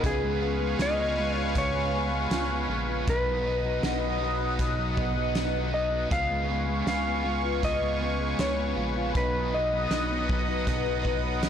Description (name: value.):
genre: dream pop.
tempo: 79 BPM.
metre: 4/4.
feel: straight.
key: B lydian.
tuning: A4 = 440 Hz.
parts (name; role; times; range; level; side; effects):
clean lap steel guitar; melody; 0.0-11.0 s; G#4 to E#5; -31 LUFS; equal; tape echo.
biting overdriven guitar; accompaniment; 0.0-11.5 s; B2 to E#4; -36 LUFS; right 4 dB; tremolo, wide subtle chorus.
phased analog pad; sustained chords; 0.0-11.5 s; B4 to D#6; -31 LUFS; left 2 dB; phaser, chorus.
mellow electric guitar; arpeggios; 0.0-11.5 s; B2 to E#4; -33 LUFS; left 2 dB; wide subtle chorus, tape echo.
round analog bass; bass; 0.0-11.5 s; A#1 to C#2; -32 LUFS; equal; tube saturation.
loose indie drum kit; drums; 0.0-11.5 s; hi-hat, kick drum, snare drum, tambourine; -32 LUFS; right 1 dB; none.
room: light reverb, studio reverb.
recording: blown-out, overdriven recording, overdrive.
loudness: -25 LUFS.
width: side -8 dB against mid.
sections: 0.0-11.5 A section.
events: none.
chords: 0.0 C#7; 3.1 B; 6.1 C#7; 9.2 B.